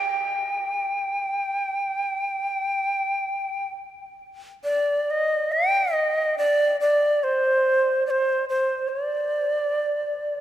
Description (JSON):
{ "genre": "japanese traditional", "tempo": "free time", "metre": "none", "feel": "none", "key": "unclear", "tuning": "A4 = 439 Hz", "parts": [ { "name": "breathy bright shakuhachi", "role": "solo", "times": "0.0-10.4 s", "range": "C5 to G5", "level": "-21 LUFS", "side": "equal", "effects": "none" } ], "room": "wet cathedral reverb, RT60 4.7 s", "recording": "none", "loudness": "-21 LUFS", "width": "side -12 dB against mid", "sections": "0.0-4.6 A section; 4.6-10.4 B section", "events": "none", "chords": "none" }